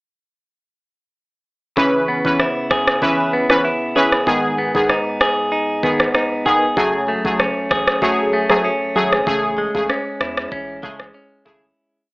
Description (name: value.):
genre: dancehall.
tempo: 96 BPM.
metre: 4/4.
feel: straight.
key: C# minor.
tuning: A4 = 441 Hz.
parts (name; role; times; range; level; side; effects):
synth brass stab; accompaniment; 1.8-11.7 s; C#3 to B4; -17 LUFS; equal; chorus.
direct-recorded clean electric guitar; arpeggios; 1.8-12.1 s; F#2 to G#4; -20 LUFS; equal; none.
afro-pop drum kit; drums; 1.8-11.6 s; kick drum, rim click; -20 LUFS; equal; none.
punchy sub bass; bass; 6.8-11.7 s; F#1 to E2; -38 LUFS; equal; none.
room: little or no reverb.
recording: dry, gritty hardware recording, AM radio sound.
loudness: -15 LUFS.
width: side -30 dB against mid.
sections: 1.8-11.8 verse.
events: fade-out 9.3-11.8.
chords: 1.8 C#m7; 4.3 G#m; 6.8 F#madd9; 9.3 Amaj7.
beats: | 1.77 2.40 3.02 3.65 | 4.27 4.90 5.52 6.15 | 6.77 7.40 8.02 8.65 | 9.27 9.90 10.52 11.15.